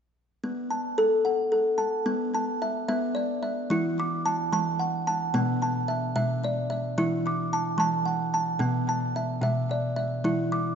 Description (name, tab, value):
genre	world meditative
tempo	73 BPM (dotted quarters)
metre	6/8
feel	straight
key	B minor pentatonic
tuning	A4 = 440 Hz
part	kalimba	solo	0.4-10.8 s	B2 to D6	-24 LUFS	equal	ping-pong delay
room	wet echo chamber reverb, RT60 2.1 s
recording	dark, warm production, nothing above 7.6 kHz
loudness	-24 LUFS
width	side -7 dB against mid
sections	0.4-2.1 A section; 2.1-10.8 B section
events	none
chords	0.4 B5; 2.1 Bm; 3.7 E9sus4; 5.3 Bm; 7.0 E9sus4; 8.6 Bm; 10.2 E7(no3)